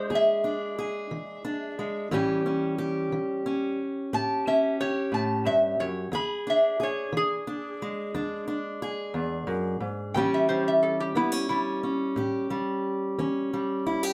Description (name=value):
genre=acoustic country blues, solo or duo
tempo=60 BPM (dotted quarters)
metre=12/8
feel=straight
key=A mixolydian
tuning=A4 = 437 Hz
part: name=metal-body resonator slide guitar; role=melody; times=0.0-12.1 s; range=E4 to B5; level=-28 LUFS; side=equal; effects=none
part: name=fingerpicked steel-string acoustic guitar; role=accompaniment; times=0.0-14.1 s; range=E2 to G#4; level=-30 LUFS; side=equal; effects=none
room=moderate small room reverb, RT60 0.6 s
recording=heard from further back in the room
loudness=-28 LUFS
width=mono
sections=0.0-10.2 A section; 10.2-14.1 B section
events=resonator guitar played with a steel bar solo 0.0-10.2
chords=0.0 E7; 2.1 A7; 6.1 E7; 10.2 A7